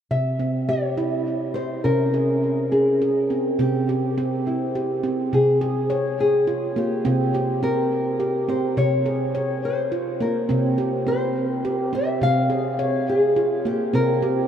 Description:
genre	world meditative, meditative tuned percussion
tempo	70 BPM (dotted quarters)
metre	6/8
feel	straight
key	C phrygian dominant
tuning	A4 = 438 Hz
part	nylon-string guitar	melody	0.1-14.5 s	E4 to F5	-23 LUFS	left 1 dB	none
part	handpan	arpeggios	0.1-14.5 s	C3 to Db5	-22 LUFS	right 1 dB	diffuse ambient delay
room	wet huge ambient reverb, RT60 8.5 s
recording	in a vast, echoing space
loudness	-20 LUFS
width	side -9 dB against mid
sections	0.1-3.6 A section; 3.6-14.5 B section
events	none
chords	0.1 C; 1.8 Db5/C; 3.6 C; 5.3 Db/C; 7.0 C5; 8.8 Bbm/C; 10.5 C5; 12.2 Db/C; 13.9 C5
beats	| 0.11 0.98 | 1.85 2.72 | 3.59 4.45 | 5.32 6.18 | 7.05 7.91 | 8.78 9.64 | 10.50 11.36 | 12.22 13.08 | 13.95

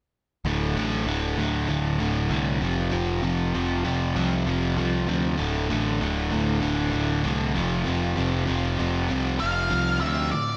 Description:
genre	rock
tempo	97 BPM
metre	4/4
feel	straight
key	unclear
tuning	A4 = 440 Hz
part	modern bright picked electric bass	bass	0.4-10.3 s	D1 to D2	-30 LUFS	equal	none
part	overdriven semi-hollow guitar	riff	0.5-10.6 s	D2 to F3	-29 LUFS	equal	none
part	sludgy distorted guitar	riff	0.5-10.6 s	D2 to F3	-31 LUFS	equal	overdrive
part	octave-fuzz lead guitar	melody	9.4-10.6 s	D5 to F5	-28 LUFS	equal	distortion
room	moderate concert hall reverb, RT60 2.4 s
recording	big arena sound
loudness	-25 LUFS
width	mono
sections	0.5-10.3 A section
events	none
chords	0.5 D5; 2.6 F5; 5.4 D5; 7.6 F5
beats	| 0.46 1.07 1.69 2.31 | 2.93 3.54 4.16 4.78 | 5.40 6.01 6.63 7.25 | 7.86 8.48 9.10 9.71 | 10.33

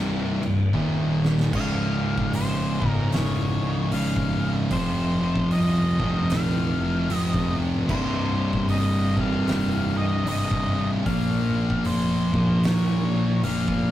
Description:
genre	stoner and doom metal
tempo	76 BPM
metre	4/4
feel	swing 62% on 8ths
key	unclear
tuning	A4 = 438 Hz
part	thick fuzz guitar	riff	0.0-13.9 s	C2 to Bb3	-25 LUFS	left 2 dB	distortion
part	thick fuzz guitar	riff	0.0-13.9 s	C2 to Bb3	-26 LUFS	right 2 dB	distortion
part	tight distorted guitar	riff	0.0-13.9 s	C2 to Bb3	-33 LUFS	right 1 dB	distortion
part	fuzz fingered electric bass	bass	0.0-13.9 s	C1 to C2	-33 LUFS	equal	overdrive
part	oversized low-tuned drum kit	drums	0.4-13.9 s	crash cymbal, hi-hat, kick drum, snare drum	-30 LUFS	equal	none
part	octave-fuzz lead guitar	melody	1.6-13.9 s	C5 to F5	-31 LUFS	left 2 dB	distortion
room	moderate booth ambience, RT60 0.2 s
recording	rough rehearsal-room recording, tube saturation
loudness	-21 LUFS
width	side -13 dB against mid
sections	0.0-1.5 A section; 1.5-13.9 B section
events	drum fill 0.7-1.5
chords	0.0 C5; 0.7 Eb5; 1.5 Db; 4.7 F5; 7.9 C5; 11.1 Bbm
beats	0.74 | 1.53 2.33 3.12 3.92 | 4.71 5.51 6.30 7.10 | 7.89 8.69 9.48 10.27 | 11.06 11.86 12.65 13.44

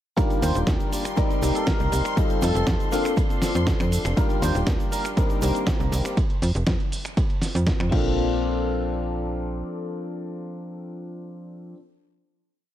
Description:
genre	filtered disco house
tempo	120 BPM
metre	4/4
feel	straight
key	Bb major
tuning	A4 = 440 Hz
part	clear grand piano	accompaniment	0.2-11.7 s	Eb3 to D5	-28 LUFS	left 3 dB	phaser, vintage 12-bit sampler grit, sidechain pumping
part	phased string machine	sustained chords	0.2-6.2 s	C6	-38 LUFS	equal	ensemble chorus, phaser, sidechain pumping
part	direct-recorded clean electric guitar	riff	0.2-11.8 s	Eb3 to A4	-32 LUFS	equal	vintage 12-bit sampler grit, sidechain pumping
part	dusty soul sampler-style drum kit	drums	0.2-8.0 s	crash cymbal, finger snaps, hi-hat, ride cymbal, shaker, snare drum	-30 LUFS	right 1 dB	sidechain pumping on hats, sidechain pumping on cymbals, sidechain pumping on perc
part	electronic kick drum	drums	0.2-8.0 s	none	-24 LUFS	equal	overdrive
part	egg shaker	percussion	0.2-6.1 s	none	-45 LUFS	equal	none
part	muted trumpet section	melody	0.4-5.1 s	A4 to C5	-32 LUFS	equal	sidechain pumping, ping-pong delay
part	slap-like FM bass	bass	0.4-9.6 s	Eb1 to F2	-24 LUFS	equal	sidechain pumping
room	light reverb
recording	none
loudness	-21 LUFS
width	side -12 dB against mid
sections	0.2-8.2 drop; 8.2-12.2 final hit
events	drop 0.2-8.2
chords	0.2 Ebmaj7; 1.2 Cm7; 2.2 F9; 2.9 Bbmaj9/F; 4.2 Ebmaj7; 5.2 Cm7; 6.2 N.C.; 7.9 Bbmaj9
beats	| 0.17 0.67 1.17 1.67 | 2.17 2.67 3.17 3.67 | 4.17 4.67 5.17 5.67 | 6.17 6.67 7.17 7.67 | 8.17 8.67 9.17 9.67 | 10.17 10.67 11.17 11.67

